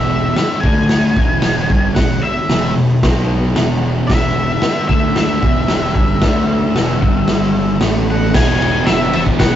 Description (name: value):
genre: garage rock duo or trio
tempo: 113 BPM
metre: 4/4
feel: straight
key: unclear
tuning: A4 = 440 Hz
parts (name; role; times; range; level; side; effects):
- octave-fuzz lead guitar; melody; 0.0-9.6 s; E5 to G#5; -20 LUFS; left 1 dB; distortion
- fuzz guitar; riff; 0.0-9.6 s; E2 to D4; -17 LUFS; equal; distortion
- growling picked electric bass; bass; 0.0-9.6 s; E1 to D2; -22 LUFS; equal; overdrive
- raw garage drum kit; drums; 0.4-9.5 s; crash cymbal, hi-hat, kick drum, ride cymbal, snare drum; -16 LUFS; equal; none
room: wet booth ambience, RT60 0.2 s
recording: rough rehearsal-room recording, warm saturation, nothing above 7.8 kHz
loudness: -12 LUFS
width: side -11 dB against mid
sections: 0.0-8.3 A section; 8.3-9.6 B section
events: none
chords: 0.0 E5; 0.6 D5; 1.2 E; 3.0 B5; 3.6 E5; 4.9 D5; 5.4 E5; 6.2 D5; 6.7 E5; 7.0 G5; 7.8 A5; 8.3 E